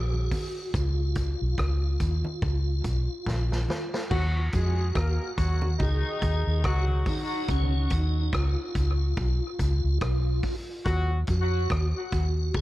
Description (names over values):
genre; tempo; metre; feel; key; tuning
dub reggae; 71 BPM; 4/4; swing 57% on 16ths; Eb minor; A4 = 440 Hz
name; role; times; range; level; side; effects
tonewheel organ; melody; 0.0-12.6 s; Db4 to Ab4; -34 LUFS; equal; chorus vibrato, fast rotary speaker, tape echo
vintage muted fingered electric bass; bass; 0.0-12.6 s; Bb1 to F2; -25 LUFS; equal; none
congas; percussion; 0.1-7.3 s; none; -38 LUFS; right 1 dB; none
vintage drum kit; drums; 0.3-12.6 s; crash cymbal, hi-hat, kick drum, rim click, snare drum; -32 LUFS; equal; none
mellow horn section; second line; 4.1-11.2 s; Eb3 to Bb4; -34 LUFS; left 3 dB; tape echo
room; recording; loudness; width
small room ambience; echo-heavy mix; -24 LUFS; side -16 dB against mid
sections
0.0-4.1 A section; 4.1-12.6 B section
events
drum fill 3.3-4.1; part muted 7.5-12.6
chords
0.0 Ebm (rootless); 0.7 Db; 4.1 Ebm; 7.5 Db; 10.9 Ebm